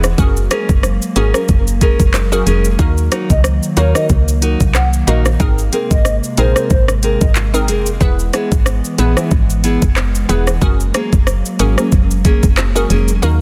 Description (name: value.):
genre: dancehall.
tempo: 92 BPM.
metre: 4/4.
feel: swing 56% on 16ths.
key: unclear.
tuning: A4 = 440 Hz.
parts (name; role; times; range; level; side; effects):
hollow soft pad; sustained chords; 0.0-13.4 s; C3 to B3; -26 LUFS; equal; chorus, sidechain pumping.
nylon-string guitar; arpeggios; 0.0-13.1 s; Bb3 to Bb4; -24 LUFS; equal; digital delay.
woody FM bass; bass; 0.0-13.4 s; E1 to Eb2; -18 LUFS; equal; none.
island pop drum kit; drums; 0.0-13.4 s; handclaps, hi-hat, kick drum, rim click, shaker; -17 LUFS; equal; overdrive.
glassy wavetable pluck; accompaniment; 0.2-13.4 s; Bb3 to B4; -24 LUFS; equal; chorus.
hollow clarinet-like synth lead; melody; 3.3-7.3 s; C5 to Gb5; -24 LUFS; equal; chorus, digital delay.
room: little or no reverb.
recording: dense, heavily limited modern master.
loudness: -14 LUFS.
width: mono.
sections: 0.0-13.2 A section.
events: kick muted 13.2.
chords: 0.2 Gbadd9; 2.8 Ebm; 5.4 Abadd9; 8.0 E; 10.6 Gbadd9.